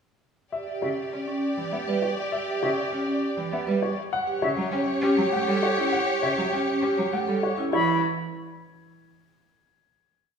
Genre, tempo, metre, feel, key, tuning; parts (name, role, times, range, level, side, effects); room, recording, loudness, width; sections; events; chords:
classical, minimalist pattern music; 100 BPM; 3/4; straight; E dorian; A4 = 440 Hz
dark baby grand piano; melody; 0.5-8.0 s; G4 to G5; -30 LUFS; left 4 dB
warm clarinet; second line; 0.5-7.5 s; G4; -32 LUFS; right 5 dB
warm symphonic string section; sustained chords; 0.5-7.5 s; G4 to D5; -30 LUFS; left 1 dB
vibraphone with soft mallets; arpeggios; 0.7-8.0 s; C#4 to C#5; -30 LUFS; right 4 dB
rich cello; accompaniment; 0.8-8.0 s; C#3 to C#4; -30 LUFS; right 1 dB
bright silver concert flute; arpeggios; 0.8-8.0 s; E5 to B5; -31 LUFS; left 4 dB
wet recital hall reverb, RT60 1.6 s; recorded in a church or concert hall, small room ambience; -23 LUFS; side -6 dB against mid
0.5-7.7 A section; 7.7-9.5 final chord
0.5 Em7; 4.1 A7; 7.7 E5